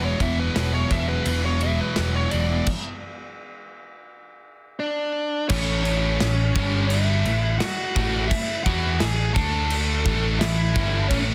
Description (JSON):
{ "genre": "quiet-loud alternative rock", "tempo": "85 BPM", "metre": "4/4", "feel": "straight", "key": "A major", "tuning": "A4 = 443 Hz", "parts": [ { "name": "bluesy overdriven lead guitar", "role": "melody", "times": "0.0-11.2 s", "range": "C#4 to A5", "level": "-30 LUFS", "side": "equal", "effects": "distortion" }, { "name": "fingerpicked steel-string acoustic guitar", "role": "arpeggios", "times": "0.0-2.7 s", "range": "E2 to E4", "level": "-33 LUFS", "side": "equal", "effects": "digital delay" }, { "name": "cranked stack guitar", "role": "riff", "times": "0.0-11.3 s", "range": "E2 to E4", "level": "-32 LUFS", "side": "equal", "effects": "overdrive" }, { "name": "thick fuzz guitar", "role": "riff", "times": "0.0-11.3 s", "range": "E2 to E4", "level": "-33 LUFS", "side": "equal", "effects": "none" }, { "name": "overdriven picked electric bass", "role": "bass", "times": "0.0-11.3 s", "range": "E1 to E2", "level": "-27 LUFS", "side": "equal", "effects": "none" }, { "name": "loose indie drum kit", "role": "drums", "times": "0.2-11.3 s", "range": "crash cymbal, kick drum, ride cymbal, snare drum", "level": "-29 LUFS", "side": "equal", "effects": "none" }, { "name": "clear studio string section", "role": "sustained chords", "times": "5.5-11.3 s", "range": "C#3 to A4", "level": "-42 LUFS", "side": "equal", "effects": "none" }, { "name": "scooped high-gain guitar", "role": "riff", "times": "5.5-11.3 s", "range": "G2 to E4", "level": "-33 LUFS", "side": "equal", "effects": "none" } ], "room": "little or no reverb", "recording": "dense, heavily limited modern master", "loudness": "-23 LUFS", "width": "mono", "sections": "0.0-5.5 A section; 5.5-11.3 B section", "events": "lead electric guitar solo 0.0-5.5; stop 2.7-5.5", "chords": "0.0 Eadd9; 2.7 N.C.; 5.5 A; 6.6 G5; 7.3 A; 9.4 D5; 10.1 A" }